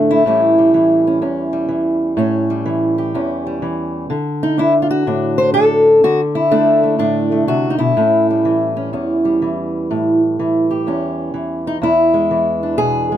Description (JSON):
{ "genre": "acoustic country blues, solo or duo", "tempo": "124 BPM", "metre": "4/4", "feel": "swing 66% on 8ths", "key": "A mixolydian", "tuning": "A4 = 441 Hz", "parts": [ { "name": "fingerpicked old ladder-braced acoustic guitar", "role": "solo", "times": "0.0-13.2 s", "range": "E2 to C5", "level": "-13 LUFS", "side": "equal", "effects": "none" } ], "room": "light reverb", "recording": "close, detailed microphones", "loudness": "-13 LUFS", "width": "side -11 dB against mid", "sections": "0.0-13.2 A section", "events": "none", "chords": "0.2 A7; 4.1 D7; 8.0 A7; 11.8 E7" }